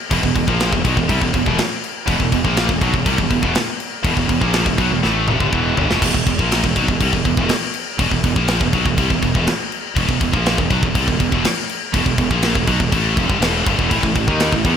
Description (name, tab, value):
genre	heavy metal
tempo	122 BPM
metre	4/4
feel	straight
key	E minor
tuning	A4 = 439 Hz
part	scooped high-gain guitar	riff	0.1-14.8 s	E2 to D#4	-22 LUFS	left 9 dB	distortion
part	scooped high-gain guitar	riff	0.1-14.8 s	E2 to D#4	-23 LUFS	right 10 dB	distortion
part	tight distorted guitar	riff	0.1-6.0, 13.9-14.8 s	E2 to D#4	-23 LUFS	equal	distortion, slapback echo
part	fuzz fingered electric bass	bass	0.1-14.8 s	E1 to E2	-21 LUFS	equal	overdrive
part	tight metal drum kit	drums	0.1-14.8 s	crash cymbal, kick drum, snare drum, toms	-20 LUFS	left 1 dB	none
room	light reverb, small room ambience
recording	none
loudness	-15 LUFS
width	side -8 dB against mid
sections	0.0-6.0 A section; 6.0-14.8 A section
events	drum fill 5.0-6.0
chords	0.0 Em; 13.9 A5